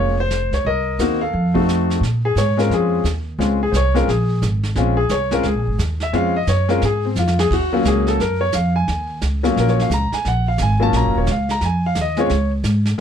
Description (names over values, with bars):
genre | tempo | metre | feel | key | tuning
jazz piano trio | 175 BPM | 4/4 | swing 62% on 8ths | Bb minor | A4 = 440 Hz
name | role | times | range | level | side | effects
clear grand piano | melody | 0.0-13.0 s | Gb3 to Bb5 | -19 LUFS | left 2 dB | none
upright bass | bass | 0.0-13.0 s | Eb1 to Bb2 | -19 LUFS | right 1 dB | none
vintage brush drum kit | drums | 0.3-13.0 s | brushed snare drum, crash cymbal, hi-hat, kick drum, snare drum | -29 LUFS | right 4 dB | none
room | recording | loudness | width
light reverb | dark, warm production | -16 LUFS | side -8 dB against mid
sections
0.0-2.0 A section; 2.0-13.0 B section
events
grand piano solo 2.0-13.0; drum fill 7.2-7.5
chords
0.0 Bbm7; 0.7 Cm7b5; 1.3 F7b9; 2.0 Bbm7; 7.5 Ebm9; 11.6 Dbadd9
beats
0.31 | 0.66 1.00 1.34 1.68 | 2.03 2.37 2.71 3.06 | 3.40 3.74 4.08 4.43 | 4.77 5.11 5.45 5.80 | 6.14 6.48 6.82 7.17 | 7.51 7.85 8.19 8.54 | 8.88 9.22 9.56 9.91 | 10.25 10.59 10.93 11.28 | 11.62 11.96 12.30 12.65 | 12.99